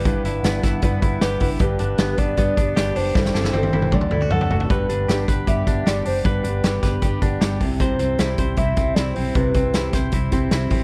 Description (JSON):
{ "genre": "jangly indie pop", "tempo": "155 BPM", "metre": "4/4", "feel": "straight", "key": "G major", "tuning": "A4 = 440 Hz", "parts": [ { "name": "hollow clarinet-like synth lead", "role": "melody", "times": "0.0-10.1 s", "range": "B4 to F#5", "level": "-28 LUFS", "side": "equal", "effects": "chorus, tape echo" }, { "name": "fingerpicked steel-string acoustic guitar", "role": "accompaniment", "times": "0.0-10.8 s", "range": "C3 to B4", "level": "-28 LUFS", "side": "equal", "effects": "none" }, { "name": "hollow soft pad", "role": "sustained chords", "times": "0.0-4.7 s", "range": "D3 to F#5", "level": "-38 LUFS", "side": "equal", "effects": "none" }, { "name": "direct-recorded clean electric guitar", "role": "arpeggios", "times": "0.0-10.8 s", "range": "G2 to C5", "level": "-30 LUFS", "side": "equal", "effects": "spring reverb" }, { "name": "vintage muted fingered electric bass", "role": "bass", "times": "0.0-10.8 s", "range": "F#1 to D2", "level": "-28 LUFS", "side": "equal", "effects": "none" }, { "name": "vintage drum kit", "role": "drums", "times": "0.1-10.8 s", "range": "hi-hat, kick drum, snare drum, toms", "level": "-24 LUFS", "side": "equal", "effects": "none" } ], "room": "small room ambience", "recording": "none", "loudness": "-20 LUFS", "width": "mono", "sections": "0.0-4.7 A section; 4.7-10.8 B section", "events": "drum fill 3.2-4.7", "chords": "0.0 Em7/G; 1.6 G; 3.2 Am/G; 3.9 D; 4.7 G; 7.6 C" }